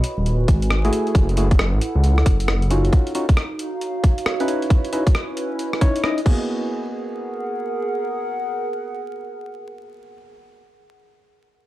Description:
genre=UK garage, two-step garage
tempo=135 BPM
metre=4/4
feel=swing 64% on 16ths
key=G# minor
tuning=A4 = 441 Hz
part: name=breakbeat sampler-style drum kit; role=drums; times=0.0-6.4 s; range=crash cymbal, hi-hat, rim click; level=-27 LUFS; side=equal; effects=studio ambience
part: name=warbly tape-like pad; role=texture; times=0.0-10.8 s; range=C#4 to G#5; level=-27 LUFS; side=right 1 dB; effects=chorus, built-in reverb, sidechain pumping
part: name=dark detuned saw bass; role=bass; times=0.2-2.9 s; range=D#1 to C#2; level=-18 LUFS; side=equal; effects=none
part: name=electronic kick drum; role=drums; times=0.5-6.4 s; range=none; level=-15 LUFS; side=equal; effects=studio ambience
part: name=percussive organ stab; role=stabs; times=0.8-10.7 s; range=A3 to D#5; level=-25 LUFS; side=equal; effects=chorus, dub echo
room=light reverb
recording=dark, warm production, vinyl crackle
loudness=-18 LUFS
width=side -15 dB against mid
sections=0.0-6.5 A section; 6.5-10.0 B section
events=none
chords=0.0 G#m7; 0.9 F#m9; 2.9 D#m9; 4.5 C#m9; 6.3 G#m9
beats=0.26 0.70 | 1.15 1.59 2.04 2.48 | 2.92 3.37 3.81 4.26 | 4.70 5.15 5.59 6.04 | 6.48 6.92 7.37 7.81 | 8.26 8.70 9.15 9.59

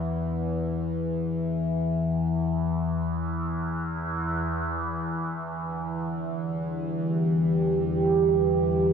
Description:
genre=dark ambient drone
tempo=free time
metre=none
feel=none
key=E minor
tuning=A4 = 440 Hz
part: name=overtone-sweeping drone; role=drone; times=0.0-8.9 s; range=E2 to E3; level=-26 LUFS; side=left 2 dB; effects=chorus, built-in reverb
part: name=deep dark ambient pad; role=sustained chords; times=5.7-8.9 s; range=E3 to B4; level=-26 LUFS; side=right 4 dB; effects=chorus, built-in reverb
room=wet huge ambient reverb, RT60 7.1 s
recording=none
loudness=-24 LUFS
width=side -6 dB against mid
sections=0.0-4.4 A section; 4.4-8.9 B section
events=none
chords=0.0 E7(no3); 4.4 Em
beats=free time

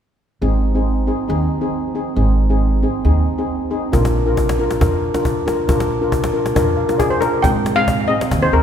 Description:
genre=calypso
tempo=137 BPM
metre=4/4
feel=straight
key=Ab major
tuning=A4 = 437 Hz
part: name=steel pan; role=accompaniment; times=0.4-8.6 s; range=C4 to F5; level=-19 LUFS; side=left 1 dB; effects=none
part: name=upright bass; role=bass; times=0.4-8.6 s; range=Ab1 to Ab2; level=-19 LUFS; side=right 1 dB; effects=none
part: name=cajon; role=drums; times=3.9-8.6 s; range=none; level=-22 LUFS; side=left 1 dB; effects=none
part: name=steel pan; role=melody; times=7.0-8.6 s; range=Ab4 to G5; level=-17 LUFS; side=left 2 dB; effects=none
room=wet concert hall reverb, RT60 2.5 s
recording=recorded in a church or concert hall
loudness=-15 LUFS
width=side -8 dB against mid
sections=0.4-7.4 A section; 7.4-8.6 B section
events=steel pan fill 6.6-7.4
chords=0.4 Ab; 3.9 Bb; 7.4 Ab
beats=| 0.42 0.86 1.30 1.74 | 2.17 2.61 3.05 3.49 | 3.92 4.36 4.80 5.24 | 5.68 6.12 6.55 6.99 | 7.43 7.87 8.31

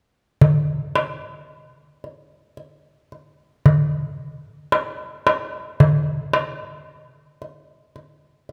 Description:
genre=arabic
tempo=112 BPM (eighths)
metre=10/8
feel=straight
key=none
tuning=none
part: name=darbuka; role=percussion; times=0.4-8.5 s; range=none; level=-19 LUFS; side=equal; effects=none
room=wet recital hall reverb, RT60 1.7 s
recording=none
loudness=-20 LUFS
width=mono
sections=0.4-8.5 A section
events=none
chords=none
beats=| 0.42 0.96 1.50 2.04 2.58 3.11 3.65 4.19 4.73 5.27 | 5.80 6.34 6.88 7.42 7.96 8.50

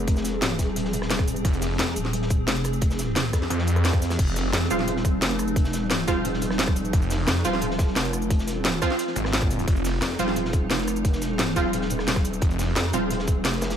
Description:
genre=dark technical drum and bass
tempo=175 BPM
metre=4/4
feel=straight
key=F minor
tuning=A4 = 435 Hz
part: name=swarming drone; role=sustained chords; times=0.0-13.8 s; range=F3 to Ab4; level=-30 LUFS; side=equal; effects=built-in reverb, sidechain pumping
part: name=pulsing pluck wobble bass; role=bass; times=0.0-13.8 s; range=Eb1 to F2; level=-27 LUFS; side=equal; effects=chorus
part: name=crunchy breakbeat drum kit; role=drums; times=0.1-13.8 s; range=hi-hat, snare drum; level=-36 LUFS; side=equal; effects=high-pass filter on hats, high-pass filter on snare, high-pass filter on room
part: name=drum and bass drum kit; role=drums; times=0.1-13.8 s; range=crash cymbal, hi-hat, rim click, shaker, snare drum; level=-27 LUFS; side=equal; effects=none
part: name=electronic kick drum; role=drums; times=0.1-13.3 s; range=none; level=-22 LUFS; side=equal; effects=none
part: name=snarling distorted saw bass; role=bass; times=1.4-4.5, 6.9-10.0, 12.4-12.7 s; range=F1 to F2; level=-25 LUFS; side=equal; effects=distortion, overdrive, sidechain pumping
part: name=orchestra-hit-like synth stab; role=stabs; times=4.7-13.8 s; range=F3 to F4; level=-29 LUFS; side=right 3 dB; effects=built-in reverb, ping-pong delay
room=light reverb, digital ambience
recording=none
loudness=-21 LUFS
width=side -9 dB against mid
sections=0.0-13.8 A section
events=none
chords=0.0 Fm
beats=| 0.08 0.42 0.76 1.10 | 1.45 1.79 2.13 2.48 | 2.82 3.16 3.50 3.85 | 4.19 4.53 4.88 5.22 | 5.56 5.91 6.25 6.59 | 6.93 7.28 7.62 7.96 | 8.30 8.65 8.99 9.33 | 9.68 10.02 10.36 10.71 | 11.05 11.39 11.73 12.08 | 12.42 12.76 13.11 13.45

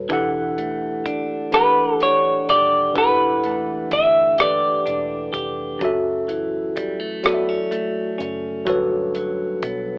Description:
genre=slow six-eight R&B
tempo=42 BPM (dotted quarters)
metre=6/8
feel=straight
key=E dorian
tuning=A4 = 441 Hz
part: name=tine electric piano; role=accompaniment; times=0.0-10.0 s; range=E3 to F#5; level=-23 LUFS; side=equal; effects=fast stereo tremolo, cassette tape
part: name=vintage muted fingered electric bass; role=bass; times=0.0-10.0 s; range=D#1 to B1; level=-41 LUFS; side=equal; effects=none
part: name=clean electric guitar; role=second line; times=0.1-10.0 s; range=F#2 to G4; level=-28 LUFS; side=right 1 dB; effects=cassette tape
part: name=damped 70s drum kit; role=drums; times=0.1-9.8 s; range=hi-hat, kick drum, rim click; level=-23 LUFS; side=equal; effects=none
part: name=semi-hollow electric guitar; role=melody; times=1.5-5.4 s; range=B4 to E5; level=-16 LUFS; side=equal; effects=lush chorus, cassette tape
room=wet small room reverb, RT60 0.5 s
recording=home recording on cassette, AM radio sound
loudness=-17 LUFS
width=side -28 dB against mid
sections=0.0-10.0 A section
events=none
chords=0.1 Em11; 5.8 F#m7; 8.7 Gmaj9#11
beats=| 0.10 1.53 | 2.96 4.39 | 5.82 7.25 | 8.67

